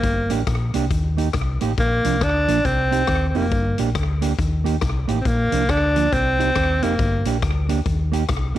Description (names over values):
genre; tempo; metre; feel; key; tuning
ska; 138 BPM; 4/4; swing 62% on 8ths; unclear; A4 = 438 Hz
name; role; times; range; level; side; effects
clear tenor saxophone; melody; 0.0-7.3 s; Bb3 to D4; -21 LUFS; equal; none
fingered electric bass; bass; 0.0-8.6 s; F1 to Eb2; -22 LUFS; equal; none
swinging big-band drum kit; drums; 0.0-8.6 s; hi-hat, kick drum, rim click; -25 LUFS; left 2 dB; slapback echo
mellow electric guitar; accompaniment; 0.3-8.6 s; F3 to G4; -26 LUFS; right 10 dB; none
room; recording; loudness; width
light reverb, studio reverb; 1960s-style stereo; -18 LUFS; side -13 dB against mid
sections
0.0-8.6 A section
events
none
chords
0.0 Gm; 0.9 Eb; 1.8 Bb; 2.6 Cm; 3.5 Gm; 4.4 Eb; 5.3 Bb; 6.1 Cm; 7.0 Gm; 7.9 Eb